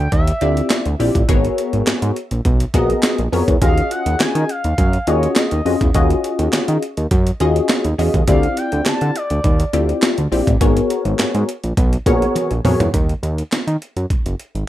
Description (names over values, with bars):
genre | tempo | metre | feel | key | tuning
early-eighties boogie funk | 103 BPM | 4/4 | straight | Eb minor | A4 = 441 Hz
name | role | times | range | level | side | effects
expressive synth lead | melody | 0.0-9.7 s | Db5 to A5 | -26 LUFS | equal | chorus, tape echo
fat analog bass | bass | 0.0-14.6 s | Gb1 to Eb3 | -18 LUFS | equal | none
breakbeat sampler-style drum kit | drums | 0.1-14.7 s | handclaps, hi-hat, kick drum, snare drum, toms | -18 LUFS | right 1 dB | none
funky polysynth comp | accompaniment | 0.4-12.9 s | Cb4 to Eb5 | -19 LUFS | left 2 dB | chorus
room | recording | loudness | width
light reverb | rough home demo mix | -15 LUFS | side -14 dB against mid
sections
0.0-12.9 A section; 12.9-14.7 B section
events
drum fill 12.4-12.9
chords
0.0 Dm11; 1.3 Abm11; 3.6 Ebm11; 8.3 Dm11; 10.6 Abm11; 12.9 Ebm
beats
0.12 0.70 | 1.29 1.87 2.45 3.04 | 3.62 4.20 4.78 5.37 | 5.95 6.53 7.11 7.70 | 8.28 8.86 9.44 10.03 | 10.61 11.19 11.77 12.36 | 12.94 13.52 14.10